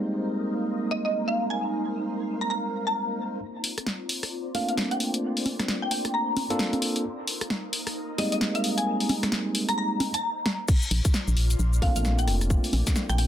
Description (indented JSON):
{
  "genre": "UK garage, two-step garage",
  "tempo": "132 BPM",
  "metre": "4/4",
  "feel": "swing 61% on 16ths",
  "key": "Bb major",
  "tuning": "A4 = 440 Hz",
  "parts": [
    { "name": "soft string machine", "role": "sustained chords", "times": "0.0-13.3 s", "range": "Bb3 to G5", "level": "-35 LUFS", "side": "right 1 dB", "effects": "phaser, ensemble chorus, sidechain pumping" },
    { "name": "bright tine electric piano", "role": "stabs", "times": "0.0-13.3 s", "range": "G3 to A4", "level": "-29 LUFS", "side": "right 1 dB", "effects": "dub echo" },
    { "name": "mallet-like synth pluck", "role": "melody", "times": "0.9-13.3 s", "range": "Eb5 to Bb5", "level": "-30 LUFS", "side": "left 1 dB", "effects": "ensemble chorus, dub echo" },
    { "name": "punchy analog drum machine", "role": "drums", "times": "3.6-13.3 s", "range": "cabasa, congas, crash cymbal, hi-hat, rim click, snare drum", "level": "-28 LUFS", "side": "equal", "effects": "none" },
    { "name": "electronic kick drum", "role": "drums", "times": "10.7-12.9 s", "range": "none", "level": "-23 LUFS", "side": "equal", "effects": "none" },
    { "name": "organ-like FM bass", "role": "bass", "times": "10.9-13.3 s", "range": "F1 to Bb1", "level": "-23 LUFS", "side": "equal", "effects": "sidechain pumping" }
  ],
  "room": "moderate studio reverb, RT60 0.5 s",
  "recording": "dense, heavily limited modern master",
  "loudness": "-24 LUFS",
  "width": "side -11 dB against mid",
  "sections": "0.0-3.4 A section; 3.4-10.7 B section; 10.7-13.3 C section",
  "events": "filter sweep on tine electric piano 0.0-3.4; build-up 3.4-10.7; filter sweep on synth pluck 3.4-10.7; filter sweep on string machine 3.4-10.7; break 10.2-10.7; drum fill 10.5; drop 10.7-13.3",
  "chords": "0.0 Abmaj9; 3.4 Bbmaj9; 7.0 Abmaj9; 10.7 Bbmaj9"
}